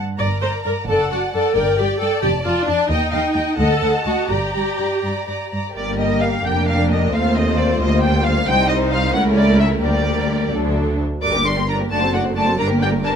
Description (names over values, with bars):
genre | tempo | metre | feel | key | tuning
quick classical-period movement for string orchestra | 81-91 BPM (dotted quarters) | 6/8 | rubato | G minor | A4 = 440 Hz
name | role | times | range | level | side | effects
warm studio cello section | bass | 0.0-13.2 s | C2 to G2 | -23 LUFS | right 1 dB | none
dark studio violin section | melody | 0.2-13.1 s | Bb4 to D6 | -23 LUFS | left 2 dB | none
rich studio violin section | second line | 0.2-13.2 s | Eb4 to Bb5 | -24 LUFS | left 2 dB | none
rich studio viola section | accompaniment | 0.2-13.1 s | F#3 to D5 | -21 LUFS | equal | none
rich studio double bass section | bass | 0.2-13.2 s | F1 to Eb2 | -24 LUFS | right 1 dB | none
room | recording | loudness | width
light reverb | none | -16 LUFS | side -7 dB against mid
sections
0.0-5.8 A section; 5.8-13.2 B section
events
none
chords
0.2 Gm; 0.9 D/F#; 1.6 G5; 2.2 Dm/F; 2.9 Eb; 3.6 D; 4.3 Gm; 7.1 Eb; 8.5 Cm; 9.1 F#7#9/C# (rootless); 9.8 Gm/D; 10.5 D; 11.2 Gm; 11.9 D7/F#; 12.6 Gm